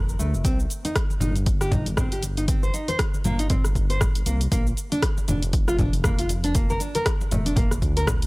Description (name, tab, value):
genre	afro house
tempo	118 BPM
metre	4/4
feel	swing 58% on 16ths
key	C dorian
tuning	A4 = 437 Hz
part	dark detuned saw bass	bass	0.0-8.3 s	F1 to D2	-26 LUFS	equal	sidechain pumping
part	deep house drum kit	drums	0.1-8.3 s	cabasa, hi-hat, rim click	-30 LUFS	equal	none
part	nylon-string guitar	arpeggios	0.2-8.1 s	A3 to C5	-28 LUFS	equal	sidechain pumping, analog delay
part	congas	percussion	0.2-8.2 s	none	-29 LUFS	left 1 dB	none
part	electronic kick drum	drums	0.4-8.2 s	none	-24 LUFS	equal	none
room	little or no reverb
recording	dry, gritty hardware recording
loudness	-20 LUFS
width	side -24 dB against mid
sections	0.0-8.3 A section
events	none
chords	0.5 Cm; 4.5 Bb